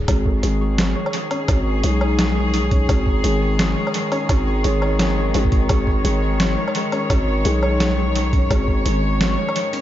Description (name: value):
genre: half-time drum and bass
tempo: 171 BPM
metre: 4/4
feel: swing 59% on 16ths, half-time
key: G# minor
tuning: A4 = 440 Hz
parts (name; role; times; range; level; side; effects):
- felt-muted upright piano; arpeggios; 0.0-9.8 s; G#3 to G#4; -26 LUFS; left 4 dB; tape echo
- growling 808-style bass; bass; 0.0-9.4 s; G#1 to B1; -20 LUFS; equal; none
- warm chamber cello section; sustained chords; 0.1-9.8 s; D#3 to C#5; -25 LUFS; left 2 dB; sidechain pumping
- boom bap sampler-style drum kit; drums; 0.1-9.8 s; hi-hat, snare drum, woodblock; -24 LUFS; equal; dub echo
- electronic kick drum; drums; 0.1-8.8 s; none; -19 LUFS; equal; none
- pulsing gated texture; texture; 0.3-9.8 s; C#5; -30 LUFS; right 2 dB; chorus, built-in reverb
room: light reverb, digital ambience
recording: echo-heavy mix, nothing above 7.6 kHz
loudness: -16 LUFS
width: side -12 dB against mid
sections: 0.0-9.8 A section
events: none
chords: 0.0 G#5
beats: | 0.08 0.43 0.78 1.14 | 1.49 1.84 2.19 2.54 | 2.89 3.24 3.59 3.94 | 4.29 4.64 4.99 5.34 | 5.70 6.05 6.40 6.75 | 7.10 7.45 7.80 8.15 | 8.50 8.85 9.21 9.56